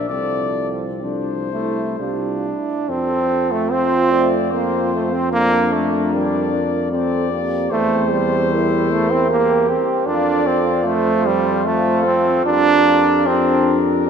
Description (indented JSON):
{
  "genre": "classical, hymn-like piece for brass band",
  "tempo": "60-79 BPM",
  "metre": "3/4",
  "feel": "rubato",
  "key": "F major",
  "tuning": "A4 = 440 Hz",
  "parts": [
    { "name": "warm cornet", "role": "melody", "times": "0.0-14.1 s", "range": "A4 to D5", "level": "-26 LUFS", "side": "left 6 dB", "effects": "none" },
    { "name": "mellow French horn section", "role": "second line", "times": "0.0-14.1 s", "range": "F4 to C5", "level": "-24 LUFS", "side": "right 8 dB", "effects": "none" },
    { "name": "clear trombone", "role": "accompaniment", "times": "0.0-14.1 s", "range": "F3 to D4", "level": "-19 LUFS", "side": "right 2 dB", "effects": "none" },
    { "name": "warm trombone section", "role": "accompaniment", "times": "0.0-14.1 s", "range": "A3 to G4", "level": "-24 LUFS", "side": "left 3 dB", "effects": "none" },
    { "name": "warm tuba", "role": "bass", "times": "0.0-14.1 s", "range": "C2 to F2", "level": "-24 LUFS", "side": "left 1 dB", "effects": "none" }
  ],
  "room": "wet church reverb, RT60 3.6 s",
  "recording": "minimal, uncompressed stereo recording",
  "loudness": "-15 LUFS",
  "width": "side -7 dB against mid",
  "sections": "0.0-2.9 A section; 2.9-14.1 B section",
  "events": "none",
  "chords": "0.1 F/C; 2.0 C; 2.9 F; 5.3 Gm7/F; 7.7 C/E; 10.1 F; 12.5 Gm7/F"
}